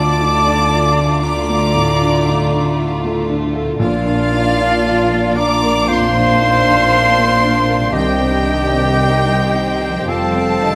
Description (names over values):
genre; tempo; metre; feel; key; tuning
cinematic, emotional film score for orchestra; 58 BPM; 4/4; rubato; unclear; A4 = 440 Hz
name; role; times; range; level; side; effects
warm chamber violin section; melody; 0.0-10.8 s; F5 to D6; -23 LUFS; equal; none
hollow concert flute; second line; 0.0-10.8 s; D5 to Bb5; -22 LUFS; equal; none
rich studio violin section; second line; 0.0-10.8 s; A3 to G4; -27 LUFS; equal; none
warm oboe; second line; 0.0-10.8 s; F4 to D5; -24 LUFS; equal; none
dark baby grand piano; accompaniment; 0.0-10.8 s; Bb1 to Eb5; -23 LUFS; equal; none
dark studio viola section; accompaniment; 0.0-10.8 s; F4 to D5; -26 LUFS; equal; none
mellow French horn section; sustained chords; 0.0-10.8 s; Eb3 to F4; -26 LUFS; equal; none
concert harp; arpeggios; 0.0-10.8 s; Bb2 to F4; -30 LUFS; equal; none
dark studio cello section; bass; 0.0-10.8 s; F2 to Eb3; -25 LUFS; equal; none
dark studio double bass section; bass; 0.0-10.8 s; F1 to D2; -25 LUFS; equal; none
room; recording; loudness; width
wet scoring stage reverb, RT60 1.6 s; none; -15 LUFS; mono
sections
0.0-10.8 A section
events
none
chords
0.0 Dm; 3.8 Bbadd9; 7.9 Cm; 10.1 Fadd9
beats
0.72 1.75 2.78 | 3.82 4.86 5.90 6.92 | 7.95 9.00 10.09